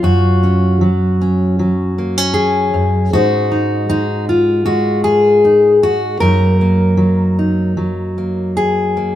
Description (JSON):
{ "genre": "folk, solo fingerstyle acoustic guitar", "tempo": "77 BPM", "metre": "4/4", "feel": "rubato", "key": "F# major", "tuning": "A4 = 440 Hz", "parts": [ { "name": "fingerpicked steel-string acoustic guitar", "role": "solo", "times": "0.0-9.2 s", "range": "F#2 to A#4", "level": "-12 LUFS", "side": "equal", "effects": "none" } ], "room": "moderate studio reverb, RT60 0.5 s", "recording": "minimal, uncompressed stereo recording", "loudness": "-12 LUFS", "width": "side -12 dB against mid", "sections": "0.0-9.2 A section", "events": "none", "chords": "0.0 F#sus2; 3.1 G#5; 6.2 D#m/F#", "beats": "| 0.03 0.82 1.59 2.36 | 3.13 3.90 4.66 5.44 | 6.21 6.99 7.78 8.57" }